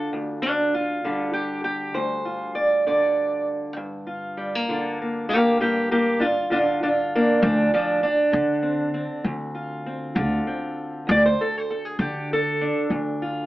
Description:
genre	acoustic country blues, solo or duo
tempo	66 BPM (dotted quarters)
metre	12/8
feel	straight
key	unclear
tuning	A4 = 440 Hz
part	fingerpicked steel-string acoustic guitar	melody	0.0-13.5 s	D2 to D5	-21 LUFS	equal	none
part	upright bass	bass	7.4-13.5 s	D2 to D3	-26 LUFS	equal	none
room	light reverb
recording	AM radio sound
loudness	-21 LUFS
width	side -16 dB against mid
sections	0.0-13.5 A section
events	steel-string acoustic guitar solo 0.0-13.5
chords	0.1 Gm7; 7.4 Dm7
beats	| 0.13 1.04 1.96 2.87 | 3.78 4.69 5.60 6.52 | 7.43 8.34 9.25 10.17 | 11.08 11.99 12.91

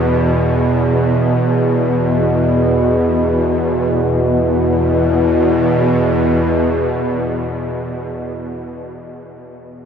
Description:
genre	ambient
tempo	free time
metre	none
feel	none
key	unclear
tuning	A4 = 440 Hz
part	bowed-like drone	solo	0.0-8.0 s	E2 to B2	-14 LUFS	equal	built-in reverb, diffuse ambient delay
room	wet huge ambient reverb, RT60 8.5 s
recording	none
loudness	-13 LUFS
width	side -7 dB against mid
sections	0.0-3.9 A section; 3.9-7.8 B section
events	none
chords	0.0 E5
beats	free time

